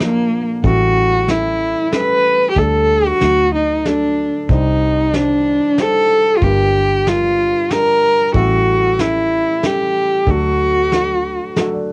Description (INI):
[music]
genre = acoustic folk-pop ballad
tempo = 93 BPM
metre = 3/4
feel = straight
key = unclear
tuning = A4 = 440 Hz
[part]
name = warm cello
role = melody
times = 0.0-11.6 s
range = Bb3 to B4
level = -17 LUFS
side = equal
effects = cassette tape
[part]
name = felt-muted upright piano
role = accompaniment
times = 0.0-11.9 s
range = G1 to F#5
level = -25 LUFS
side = equal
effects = none
[part]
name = soft brush drum kit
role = drums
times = 0.0-11.7 s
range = hi-hat, kick drum, snare drum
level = -23 LUFS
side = equal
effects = cassette tape
[part]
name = vintage muted fingered electric bass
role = bass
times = 0.6-11.4 s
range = G1 to D2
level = -22 LUFS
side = equal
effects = none
[sound]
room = moderate booth ambience, RT60 0.2 s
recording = home recording on cassette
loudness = -15 LUFS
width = mono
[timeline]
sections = 0.0-11.9 A section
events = none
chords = 0.0 Bb; 0.6 A7; 2.6 Dsus4; 3.2 D; 4.5 Cmadd9; 6.4 Gm7; 8.3 A7; 10.3 D